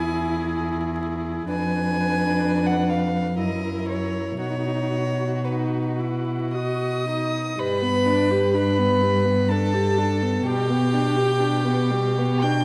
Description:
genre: classical, slow romantic movement for string quartet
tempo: 52-69 BPM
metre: 3/4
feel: rubato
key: B major, G major from 7.6 s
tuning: A4 = 445 Hz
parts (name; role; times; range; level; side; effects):
- warm violin; melody; 0.0-12.6 s; B4 to G6; -32 LUFS; equal; none
- warm violin; second line; 0.0-12.6 s; F#4 to G5; -30 LUFS; equal; none
- dark viola; accompaniment; 0.0-12.6 s; G3 to G4; -28 LUFS; equal; none
- warm cello; bass; 0.0-12.6 s; E2 to B2; -27 LUFS; equal; none
room: wet recital hall reverb, RT60 1.5 s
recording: vinyl crackle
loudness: -23 LUFS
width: mono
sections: 0.0-7.6 A section; 7.6-12.6 B section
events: none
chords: 0.0 E; 1.5 Fdim7; 3.4 F#7; 4.4 B; 7.6 G; 10.5 G/B

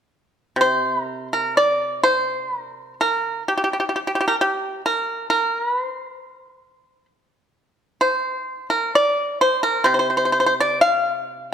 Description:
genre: chinese traditional, Chinese solo plucked strings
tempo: 62-67 BPM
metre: 4/4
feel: rubato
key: unclear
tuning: A4 = 435 Hz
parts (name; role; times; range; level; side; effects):
- pipa; solo; 0.6-11.5 s; C3 to F5; -18 LUFS; equal; none
room: moderate recital hall reverb, RT60 1.6 s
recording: none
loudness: -18 LUFS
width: side -8 dB against mid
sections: 0.6-11.5 A section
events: none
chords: none

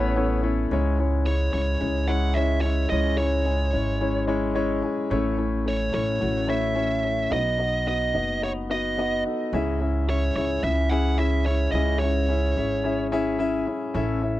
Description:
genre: piano-driven pop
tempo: 109 BPM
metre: 4/4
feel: straight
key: unclear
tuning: A4 = 440 Hz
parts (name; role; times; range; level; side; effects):
- biting lead guitar; melody; 0.0-13.1 s; C#5 to F#5; -28 LUFS; right 2 dB; overdrive
- warm grand piano; accompaniment; 0.0-14.4 s; G#2 to E5; -25 LUFS; left 3 dB; none
- upright bass; bass; 0.0-14.4 s; F#1 to C#2; -26 LUFS; right 1 dB; none
room: little or no reverb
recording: dry, close 1970s-style studio recording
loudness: -22 LUFS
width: side -15 dB against mid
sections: 0.7-14.4 A section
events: none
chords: 0.0 Aadd9; 0.7 C#m; 5.1 A; 7.3 B; 9.5 C#m

